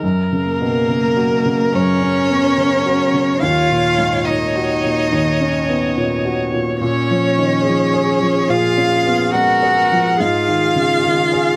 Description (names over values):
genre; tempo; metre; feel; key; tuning
neoclassical piano and strings; 71 BPM; 4/4; rubato; F# major; A4 = 441 Hz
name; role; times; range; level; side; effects
rich viola; accompaniment; 0.0-11.6 s; G#4 to C#5; -26 LUFS; equal; none
warm upright piano; accompaniment; 0.0-11.6 s; D#2 to G#4; -21 LUFS; equal; none
rich violin; melody; 0.5-11.6 s; A#4 to F#5; -21 LUFS; equal; none
clear cello; second line; 0.5-11.6 s; A#3 to F#4; -22 LUFS; equal; none
room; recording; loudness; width
light reverb; close, detailed microphones; -16 LUFS; mono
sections
0.0-11.6 A section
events
none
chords
0.0 F#; 3.4 D#m7; 6.8 A#m7; 10.2 G#5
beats
| 0.02 0.88 1.73 2.58 | 3.43 4.27 5.11 5.97 | 6.81 7.66 8.50 9.34 | 10.19 11.04